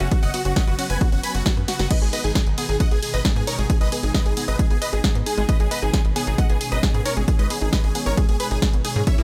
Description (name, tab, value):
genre	uplifting trance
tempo	134 BPM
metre	4/4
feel	straight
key	G# minor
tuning	A4 = 441 Hz
part	big supersaw lead	melody	0.0-9.2 s	E4 to B5	-30 LUFS	equal	phaser, sidechain pumping, tape echo
part	plucky unison lead	second line	0.0-9.2 s	E4 to B5	-35 LUFS	equal	sidechain pumping
part	analog string pad	sustained chords	0.0-9.2 s	B2 to F#4	-34 LUFS	equal	ensemble chorus, sidechain pumping
part	tight sequenced synth	arpeggios	0.0-9.2 s	F#3 to B4	-36 LUFS	equal	chorus, sidechain pumping, tape echo
part	tight sequencer bass	bass	0.0-9.2 s	F#1 to G#2	-26 LUFS	equal	sidechain pumping
part	punchy analog drum machine	drums	0.0-9.2 s	crash cymbal, hi-hat, ride cymbal, snare drum	-30 LUFS	equal	none
part	electronic kick drum	drums	0.1-9.2 s	none	-22 LUFS	equal	none
room	little or no reverb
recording	none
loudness	-21 LUFS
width	mono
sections	0.0-1.9 A section; 1.9-9.2 A section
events	drop 0.0-1.9, 1.9-9.2; drum fill 1.7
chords	0.0 F#sus4; 1.9 G#m